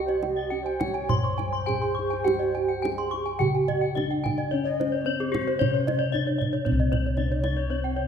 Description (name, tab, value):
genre	Balinese gamelan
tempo	103-115 BPM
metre	4/4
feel	straight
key	C pelog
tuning	A4 = 442 Hz
part	gamelan-type bronze metallophone	melody	0.0-8.1 s	C4 to C5	-29 LUFS	right 2 dB	none
part	breathy mellow bansuri	second line	0.0-8.1 s	C5 to Eb5-43c	-35 LUFS	left 2 dB	none
part	gamelan-type bronze metallophone	arpeggios	0.0-8.1 s	G4-45c to Db6	-32 LUFS	left 6 dB	none
part	gamelan-type bossed gongs	bass	0.0-8.1 s	C2 to G4-45c	-29 LUFS	left 1 dB	none
part	gamelan-type bronze metallophone	arpeggios	0.1-8.0 s	Ab4-40c to Db6	-32 LUFS	right 4 dB	none
part	kendang	percussion	0.1-8.0 s	none	-32 LUFS	right 2 dB	none
room	moderate concert hall reverb, RT60 1.8 s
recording	minimal, uncompressed stereo recording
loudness	-23 LUFS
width	side -7 dB against mid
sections	0.0-6.7 A section; 6.7-8.1 B section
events	none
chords	none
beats	0.51 1.09 1.68 | 2.26 2.84 3.41 3.97 | 4.52 5.07 5.61 6.14 | 6.66 7.18 7.70